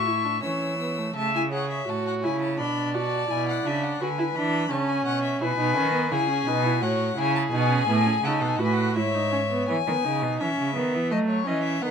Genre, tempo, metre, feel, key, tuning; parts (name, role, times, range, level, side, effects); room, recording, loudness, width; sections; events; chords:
classical, baroque-style fugue for string quartet; 84 BPM; 3/4; straight; A major; A4 = 441 Hz
warm violin; melody; 0.0-11.9 s; C#5 to E6; -29 LUFS; left 9 dB
dark violin; second line; 0.0-9.7 s; G#4 to E5; -29 LUFS; left 2 dB
dark viola; accompaniment; 0.0-11.9 s; A3 to G#4; -28 LUFS; right 2 dB
rich cello; bass; 0.0-11.9 s; G#2 to F#3; -28 LUFS; right 4 dB
moderate studio reverb, RT60 0.8 s; minimal, uncompressed stereo recording; -22 LUFS; side -7 dB against mid
0.0-1.2 A section; 1.2-9.7 B section; 9.7-11.9 C section
0.4 E5; 1.2 A/C#; 2.6 Bm; 3.3 E7/B; 4.7 A/C#; 5.4 E/B; 6.8 F#m/A; 7.5 B7; 9.0 E/G#; 9.7 E; 11.1 F#m